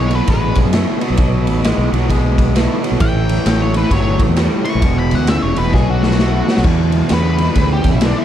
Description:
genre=blues rock power trio and southern rock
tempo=132 BPM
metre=4/4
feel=swing 63% on 8ths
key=unclear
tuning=A4 = 440 Hz
part: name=octave-fuzz lead guitar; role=melody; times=0.0-8.2 s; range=D4 to C#6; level=-22 LUFS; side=left 3 dB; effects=distortion, slapback echo
part: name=tonewheel organ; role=sustained chords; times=0.0-8.2 s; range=G#3 to G5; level=-30 LUFS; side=right 6 dB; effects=none
part: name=raw garage guitar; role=riff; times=0.0-8.2 s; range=E2 to A3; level=-19 LUFS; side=equal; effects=overdrive
part: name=growling fingered electric bass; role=bass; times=0.0-8.1 s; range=E1 to F#2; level=-17 LUFS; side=equal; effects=overdrive
part: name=raw garage drum kit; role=drums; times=0.1-8.2 s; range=crash cymbal, kick drum, ride cymbal, snare drum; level=-17 LUFS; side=equal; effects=none
room=little or no reverb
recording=none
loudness=-12 LUFS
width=side -10 dB against mid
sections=0.0-6.7 A section; 6.7-8.2 B section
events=lead electric guitar solo 0.0-6.7; drum fill 5.7-6.7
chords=0.0 B7#9; 3.0 A7#9; 4.8 E7#9; 5.7 B7#9; 6.7 E7#9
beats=0.28 0.74 | 1.19 1.65 2.10 2.55 | 3.01 3.46 3.92 4.37 | 4.83 5.28 5.74 6.19 | 6.65 7.11 7.56 8.02

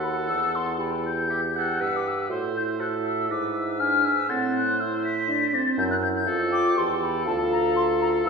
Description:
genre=quick classical-period movement for wind quintet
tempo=121 BPM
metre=4/4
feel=rubato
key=unclear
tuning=A4 = 440 Hz
part: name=mellow hollow silver concert flute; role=melody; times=0.0-8.3 s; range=A5 to B6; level=-26 LUFS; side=left 4 dB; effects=none
part: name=clear oboe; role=second line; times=0.0-8.3 s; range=G4 to C5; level=-33 LUFS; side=equal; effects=none
part: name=dark French horn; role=accompaniment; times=0.0-8.3 s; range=C4 to G4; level=-28 LUFS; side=right 1 dB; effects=none
part: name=dark clarinet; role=accompaniment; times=0.0-8.3 s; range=C5 to G#5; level=-32 LUFS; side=right 3 dB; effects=none
part: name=dark bassoon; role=bass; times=0.0-8.3 s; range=D2 to A2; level=-29 LUFS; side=right 2 dB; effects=none
room=wet recital hall reverb, RT60 1.4 s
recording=recorded in a church or concert hall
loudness=-22 LUFS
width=side -5 dB against mid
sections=0.0-8.3 A section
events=none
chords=0.3 Em; 2.3 Am; 3.3 E7/G#; 4.3 Am; 6.3 Fmaj7; 7.3 Dm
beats=| 0.28 0.79 1.30 1.80 | 2.30 2.80 3.30 3.79 | 4.29 4.79 5.29 5.78 | 6.27 6.77 7.26 7.75 | 8.25

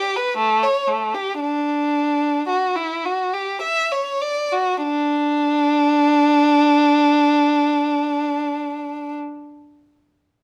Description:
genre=classical, baroque-style suite movement for unaccompanied violin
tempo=49-66 BPM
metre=3/4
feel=rubato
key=D major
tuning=A4 = 440 Hz
part: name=rich violin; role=solo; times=0.0-9.1 s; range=A3 to E5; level=-19 LUFS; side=equal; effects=none
room=light reverb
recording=none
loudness=-19 LUFS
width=mono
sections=0.0-4.8 A section; 4.8-8.4 B section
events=slowing down 0.0-4.8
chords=none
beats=0.38 | 1.39 2.48 3.62 | 4.82 6.00 7.19

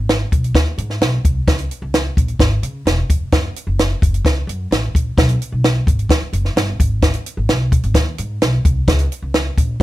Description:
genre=uptempo 1960s-style soul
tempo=130 BPM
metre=4/4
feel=straight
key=unclear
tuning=A4 = 440 Hz
part: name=upright bass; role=bass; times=0.0-9.8 s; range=E1 to C#3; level=-19 LUFS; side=equal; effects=none
part: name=compact cocktail drum kit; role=drums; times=0.1-9.8 s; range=hi-hat, kick drum, snare drum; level=-15 LUFS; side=equal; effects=none
room=light reverb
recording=none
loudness=-15 LUFS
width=side -16 dB against mid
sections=0.0-9.8 A section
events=none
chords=none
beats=0.09 0.55 1.01 | 1.48 1.94 2.40 2.86 | 3.32 3.79 4.25 4.71 | 5.17 5.64 6.10 6.56 | 7.02 7.49 7.95 8.41 | 8.88 9.34 9.81

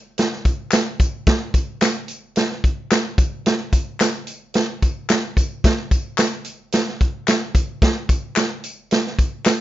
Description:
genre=soul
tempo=110 BPM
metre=4/4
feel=straight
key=none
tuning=none
part: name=vintage drum kit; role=drums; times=0.2-9.6 s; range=hi-hat, kick drum, snare drum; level=-18 LUFS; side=equal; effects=none
part: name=tambourine and handclaps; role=percussion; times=0.2-9.6 s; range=none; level=-26 LUFS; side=left 4 dB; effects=none
room=moderate studio reverb, RT60 0.6 s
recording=nothing above 7.5 kHz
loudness=-18 LUFS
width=side -14 dB against mid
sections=0.0-9.6 A section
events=none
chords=none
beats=0.18 0.72 | 1.27 1.82 2.36 2.91 | 3.45 4.00 4.55 5.09 | 5.64 6.18 6.73 7.28 | 7.82 8.37 8.91 9.46

